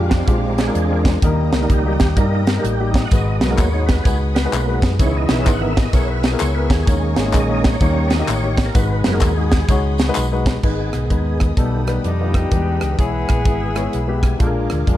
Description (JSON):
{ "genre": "uptempo gospel", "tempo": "128 BPM", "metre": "4/4", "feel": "swing 64% on 8ths", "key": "G# minor, G# harmonic minor from 10.6 s", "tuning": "A4 = 439 Hz", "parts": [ { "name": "warm baby grand piano", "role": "accompaniment", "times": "0.0-15.0 s", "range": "G#2 to C#5", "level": "-23 LUFS", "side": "left 4 dB", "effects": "none" }, { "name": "clear studio string section", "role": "sustained chords", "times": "0.0-15.0 s", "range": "B4 to E6", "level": "-35 LUFS", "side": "left 3 dB", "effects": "none" }, { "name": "overdriven tonewheel organ", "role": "sustained chords", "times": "0.0-15.0 s", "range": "D#3 to G#5", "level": "-24 LUFS", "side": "right 3 dB", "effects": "fast rotary speaker, chorus vibrato" }, { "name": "fingered electric bass", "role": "bass", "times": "0.0-15.0 s", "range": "F#1 to G2", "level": "-20 LUFS", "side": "equal", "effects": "none" }, { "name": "crisp fusion drum kit", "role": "drums", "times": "0.1-15.0 s", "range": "crash cymbal, hi-hat, kick drum, rim click, snare drum", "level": "-18 LUFS", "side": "equal", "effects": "none" }, { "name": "tambourine and handclaps", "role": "percussion", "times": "3.1-10.5 s", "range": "none", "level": "-30 LUFS", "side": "left 5 dB", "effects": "none" }, { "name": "mellow saxophone section", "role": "melody", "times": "12.0-14.2 s", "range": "B3 to G#4", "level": "-24 LUFS", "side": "left 3 dB", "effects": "none" } ], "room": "light reverb", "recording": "dark, warm production", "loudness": "-15 LUFS", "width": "side -13 dB against mid", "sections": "0.0-10.6 A section; 10.6-15.0 B section", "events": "tonewheel organ solo 0.0-10.6; tonewheel organ fill 13.7-14.4", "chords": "0.0 A#7; 1.2 D#; 3.1 G#m7; 5.0 C#m7; 6.9 D#7sus4; 7.8 D#7; 8.8 G#m7; 10.6 G#m; 11.6 B7alt; 12.5 E; 14.4 A#7" }